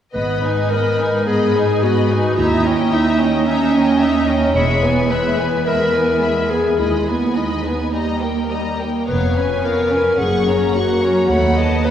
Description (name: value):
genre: classical, dramatic, fast romantic movement for symphony orchestra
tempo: 108 BPM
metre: 4/4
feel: rubato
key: G# minor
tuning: A4 = 440 Hz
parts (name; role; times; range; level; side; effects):
- bright clarinet; second line; 0.1-11.9 s; C#4 to C#5; -18 LUFS; left 1 dB; none
- warm symphonic violin section; second line; 0.1-11.9 s; A#4 to F#5; -25 LUFS; left 2 dB; none
- rich symphonic viola section; accompaniment; 0.1-11.9 s; G3 to D#4; -22 LUFS; right 1 dB; none
- clear symphonic double bass section; bass; 0.1-11.8 s; E1 to D#2; -25 LUFS; right 1 dB; none
- rich symphonic cello section; bass; 0.1-11.9 s; D#2 to G#2; -21 LUFS; right 2 dB; none
- rich symphonic violin section; melody; 0.2-11.9 s; E#5 to C#6; -28 LUFS; left 4 dB; none
room: wet concert hall reverb, RT60 2.1 s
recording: heard from further back in the room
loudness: -14 LUFS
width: side -9 dB against mid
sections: 0.1-11.9 A section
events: none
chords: 0.1 G#m; 2.4 D#7b9; 4.6 E; 6.8 G#m/D#; 7.9 D#; 9.1 C#7/E#; 10.2 F#; 11.3 B7/D#